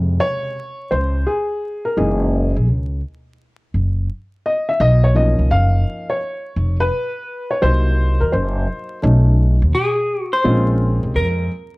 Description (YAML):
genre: hip hop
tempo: 85 BPM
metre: 4/4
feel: swing 66% on 16ths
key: unclear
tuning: A4 = 439 Hz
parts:
  - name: dark upright piano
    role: accompaniment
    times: 0.0-11.5 s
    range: C3 to E#5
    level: -20 LUFS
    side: left 1 dB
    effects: none
  - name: upright bass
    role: bass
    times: 0.0-11.5 s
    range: E#1 to F2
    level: -16 LUFS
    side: equal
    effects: tube saturation
  - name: vintage hollow-body jazz guitar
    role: melody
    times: 9.7-11.8 s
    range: Ab4 to C5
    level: -20 LUFS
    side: equal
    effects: slapback echo
room: light reverb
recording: worn, warbling old tape, cassette tape, vinyl crackle, warbly pitch drift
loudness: -16 LUFS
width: side -22 dB against mid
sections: 0.0-10.4 A section; 10.4-11.8 B section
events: upright piano solo 0.0-10.4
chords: 0.0 Bbm9 (rootless); 2.0 Gb13; 4.8 Bmaj9#11; 7.6 Cm7b5; 9.0 B9; 10.4 Bbm9